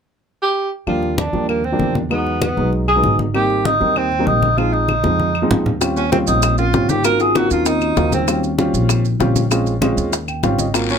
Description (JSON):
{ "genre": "Afro-Cuban jazz", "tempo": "195 BPM", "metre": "4/4", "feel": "straight", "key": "Eb major, Eb mixolydian from 5.8 s", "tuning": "A4 = 440 Hz", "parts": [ { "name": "breathy tenor saxophone", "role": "melody", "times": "0.4-8.4, 10.9-11.0 s", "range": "Bb3 to Bb4", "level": "-18 LUFS", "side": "right 1 dB", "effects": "none" }, { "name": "warm upright piano", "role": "accompaniment", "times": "0.9-11.0 s", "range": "F3 to G5", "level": "-21 LUFS", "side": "equal", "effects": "none" }, { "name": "upright bass", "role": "bass", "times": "0.9-11.0 s", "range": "G#1 to F2", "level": "-21 LUFS", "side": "equal", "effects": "none" }, { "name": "claves", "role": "percussion", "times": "0.9-10.9 s", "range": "none", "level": "-28 LUFS", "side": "left 7 dB", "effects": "none" }, { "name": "congas", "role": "percussion", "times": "0.9-11.0 s", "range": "none", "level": "-23 LUFS", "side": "left 2 dB", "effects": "none" }, { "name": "bongos", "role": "percussion", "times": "5.8-10.9 s", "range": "none", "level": "-25 LUFS", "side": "left 11 dB", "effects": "none" }, { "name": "maracas", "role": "percussion", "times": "5.8-11.0 s", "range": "none", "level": "-27 LUFS", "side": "right 11 dB", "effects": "none" }, { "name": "kalimba", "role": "second line", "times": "6.0-8.4, 10.9-11.0 s", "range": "G3 to Gb4", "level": "-23 LUFS", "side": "left 2 dB", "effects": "none" }, { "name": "guiro", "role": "percussion", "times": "10.7-11.0 s", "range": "none", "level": "-23 LUFS", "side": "left 10 dB", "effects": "none" } ], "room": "light reverb", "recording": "none", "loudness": "-15 LUFS", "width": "side -7 dB against mid", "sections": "0.9-5.8 A section; 5.8-11.0 B section", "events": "drum fill 4.9-5.8; upright piano fill 10.1-10.7", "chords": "0.0 N.C.; 0.9 Ebmaj9; 2.1 Emaj9; 3.3 Abmaj7; 4.6 Bb9sus4; 5.8 Eb13; 7.0 Ab13; 8.3 Eb13; 9.5 Bbm7; 10.1 Eb13" }